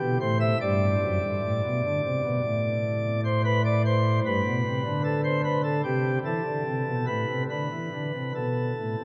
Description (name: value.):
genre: classical, chorale-style piece for pipe organ.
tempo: 70-76 BPM.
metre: 4/4.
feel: rubato.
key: unclear.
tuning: A4 = 440 Hz.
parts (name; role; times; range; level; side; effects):
pipe organ, sparkling flutes; solo; 0.0-9.0 s; F#2 to E5; -26 LUFS; equal; none.
room: wet cathedral reverb, RT60 6.5 s.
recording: in a vast, echoing space.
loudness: -26 LUFS.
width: mono.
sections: 0.0-9.0 A section.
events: none.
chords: 0.0 C; 1.0 D7(no3); 4.2 G; 5.8 Am/C.